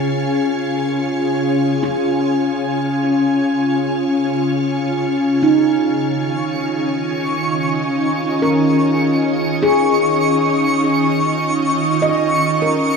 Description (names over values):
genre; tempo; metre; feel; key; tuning
ambient; 50 BPM; 4/4; straight; Db major; A4 = 440 Hz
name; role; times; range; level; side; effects
soft additive organ-like pad; sustained chords; 0.0-13.0 s; Db3 to Ab5; -16 LUFS; equal; ensemble chorus, built-in reverb, shimmer reverb
handpan; arpeggios; 0.0-13.0 s; Eb4 to Eb5; -21 LUFS; equal; dub echo, shimmer reverb
twinkling granular texture; texture; 6.4-13.0 s; Db6; -21 LUFS; right 1 dB; built-in reverb, shimmer reverb
room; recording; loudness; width
wet plate reverb, RT60 2.8 s; echo-heavy mix, small room reverb; -15 LUFS; side -5 dB against mid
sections
0.0-13.0 A section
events
none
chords
0.0 Db; 6.0 Eb5